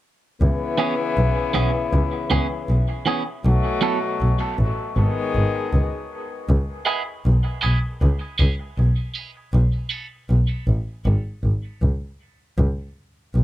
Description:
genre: reggae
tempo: 79 BPM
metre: 4/4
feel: swing 56% on 16ths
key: C# minor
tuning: A4 = 441 Hz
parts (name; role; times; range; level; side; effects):
- warm horn section; second line; 0.4-6.1 s; B2 to G#4; -26 LUFS; left 4 dB; high-pass filter, dub echo
- dark double bass; bass; 0.4-13.4 s; G#1 to C#2; -19 LUFS; equal; none
- clean electric guitar; accompaniment; 0.8-10.1 s; E3 to A4; -26 LUFS; right 4 dB; high-pass filter, dub echo
room: small room reverb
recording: none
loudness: -19 LUFS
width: side -15 dB against mid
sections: 0.4-6.5 A section; 6.5-13.4 B section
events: filter sweep 3.4-12.6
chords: 0.4 C#m7; 3.4 B7sus4; 5.0 G#m; 6.5 C#m7 (rootless); 9.5 B7sus4; 11.0 G#sus4; 12.6 Bsus2

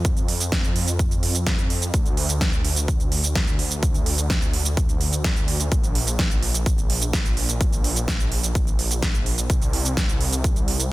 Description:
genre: EDM, festival progressive house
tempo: 127 BPM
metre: 4/4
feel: straight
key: D minor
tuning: A4 = 440 Hz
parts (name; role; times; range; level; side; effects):
- wide detuned saw bass; bass; 0.0-10.9 s; Bb1 to F2; -24 LUFS; equal; chorus, sidechain pumping
- big-room dance drum kit; drums; 0.0-10.9 s; cabasa, hi-hat, snare drum; -25 LUFS; right 2 dB; none
- electronic kick drum; drums; 0.0-10.5 s; none; -22 LUFS; equal; none
room: little or no reverb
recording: dense, heavily limited modern master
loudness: -19 LUFS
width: side -18 dB against mid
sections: 0.0-10.9 A section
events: none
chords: none

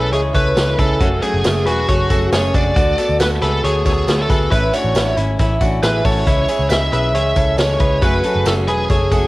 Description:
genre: jangly indie pop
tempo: 137 BPM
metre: 4/4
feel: straight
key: unclear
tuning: A4 = 439 Hz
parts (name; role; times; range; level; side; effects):
- bluesy overdriven lead guitar; melody; 0.0-9.3 s; F#4 to E5; -19 LUFS; equal; distortion
- picked steel-string acoustic guitar; accompaniment; 0.0-9.3 s; F#2 to G#4; -23 LUFS; right 2 dB; cassette tape
- direct-recorded clean electric guitar; arpeggios; 0.0-9.3 s; A3 to C#5; -22 LUFS; left 2 dB; cassette tape
- vintage muted picked electric bass; bass; 0.0-9.3 s; E1 to D2; -20 LUFS; equal; none
- vintage drum kit; drums; 0.1-9.2 s; hi-hat, kick drum, snare drum; -19 LUFS; equal; cassette tape
- tambourine; percussion; 0.3-9.2 s; none; -38 LUFS; right 9 dB; none
room: small room ambience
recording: home recording on cassette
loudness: -14 LUFS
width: side -19 dB against mid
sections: 0.0-9.3 A section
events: none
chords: 0.0 C#m; 1.0 F#madd9; 2.8 D6; 4.5 A; 6.3 C#m; 8.0 F#madd9

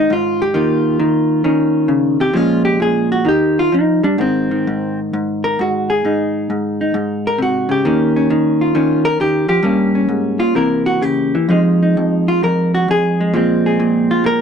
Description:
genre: solo jazz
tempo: 132 BPM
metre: 4/4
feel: swing 68% on 8ths, rubato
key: Eb mixolydian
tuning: A4 = 440 Hz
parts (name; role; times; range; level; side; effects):
- vintage hollow-body jazz guitar; solo; 0.0-14.4 s; F2 to Bb4; -13 LUFS; equal; none
room: light reverb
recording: dark, warm production, nothing above 10.7 kHz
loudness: -13 LUFS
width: side -7 dB against mid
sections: 0.0-14.4 A section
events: hollow-body jazz guitar solo 0.0-14.4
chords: 0.0 Ab; 0.6 Eb9; 2.3 Bbm7; 3.3 Ebadd9; 4.2 Ab; 7.8 Eb9; 9.6 Gdim; 10.5 C7; 11.5 Fm7; 13.3 Bbsus2

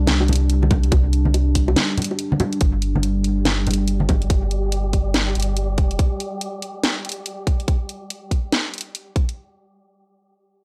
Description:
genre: deep dubstep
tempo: 142 BPM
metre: 4/4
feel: swing 61% on 16ths, half-time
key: unclear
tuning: A4 = 440 Hz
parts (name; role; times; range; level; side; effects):
- dark analog pad; sustained chords; 0.0-6.0 s; G3 to D4; -28 LUFS; equal; chorus
- soft dub sub bass; bass; 0.0-6.0 s; F1 to C2; -22 LUFS; equal; none
- garage drum kit; drums; 0.1-9.4 s; hi-hat, snare drum; -25 LUFS; equal; small room reverb
- congas and bongos; percussion; 0.1-4.2 s; none; -26 LUFS; equal; none
- electronic kick drum; drums; 0.7-9.3 s; none; -21 LUFS; equal; small room reverb
- wind-like tuned noise texture; texture; 3.2-7.7 s; G3 to G4; -34 LUFS; equal; built-in reverb
room: light reverb, digital ambience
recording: dry, gritty hardware recording, cassette tape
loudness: -21 LUFS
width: mono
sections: 0.0-2.6 A section; 2.6-9.4 B section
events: drop 0.0-2.6; break 1.8-2.6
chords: 0.0 C5; 2.6 G5

